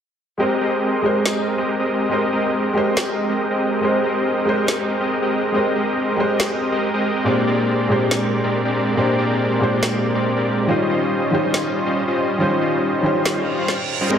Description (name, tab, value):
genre	future bass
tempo	140 BPM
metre	4/4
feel	half-time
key	Ab major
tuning	A4 = 440 Hz
part	warm baby grand piano	accompaniment	0.4-14.2 s	Bb2 to C5	-21 LUFS	equal	lush chorus, diffuse ambient delay
part	supersaw chords	riff	0.4-14.2 s	G3 to F5	-20 LUFS	equal	low-pass filter, diffuse ambient delay
part	electronic snare drum	drums	1.3-13.8 s	none	-24 LUFS	equal	none
part	reverse cymbal	sound effects	13.4-14.1 s	none	-25 LUFS	right 5 dB	none
room	wet plate reverb, RT60 1.2 s, digital ambience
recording	dreamy mix soaked in reverb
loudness	-17 LUFS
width	side -8 dB against mid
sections	0.4-14.2 A section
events	reverse cymbal 13.4-14.1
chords	0.4 Abmaj9; 7.3 Bb13; 10.7 Eb13